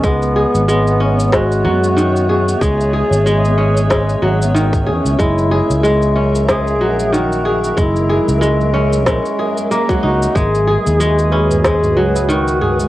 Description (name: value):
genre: organic downtempo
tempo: 93 BPM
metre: 4/4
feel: swing 56% on 16ths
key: unclear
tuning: A4 = 440 Hz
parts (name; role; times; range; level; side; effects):
- mellow duduk; melody; 0.0-12.9 s; B3 to G#4; -19 LUFS; equal; cassette tape, tape echo
- granular cloud pad; sustained chords; 0.0-12.9 s; F#3 to E5; -23 LUFS; equal; built-in reverb, vintage 12-bit sampler grit, sidechain pumping, cassette tape
- kora; arpeggios; 0.0-12.9 s; D#3 to G#4; -17 LUFS; equal; cassette tape, tape echo
- sustaining fretless electric bass; bass; 0.0-12.9 s; F#1 to F#2; -17 LUFS; equal; sidechain pumping
- electronic kick drum; drums; 0.0-11.8 s; none; -18 LUFS; equal; cassette tape
- electronic shaker and snare drum; drums; 0.0-12.9 s; none; -21 LUFS; equal; cassette tape
- swell; sound effects; 9.4-10.4 s; none; -27 LUFS; equal; none
- tabla; percussion; 10.9-12.9 s; none; -25 LUFS; right 3 dB; none
room: moderate booth ambience, RT60 0.3 s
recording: home recording on cassette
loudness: -12 LUFS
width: side -15 dB against mid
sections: 0.0-12.9 A section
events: none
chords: 0.0 C#m7; 5.2 F#7; 10.4 G#m7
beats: | 0.04 0.68 1.33 1.97 | 2.62 3.26 3.91 4.55 | 5.20 5.84 6.49 7.13 | 7.78 8.42 9.07 9.71 | 10.36 11.00 11.65 12.29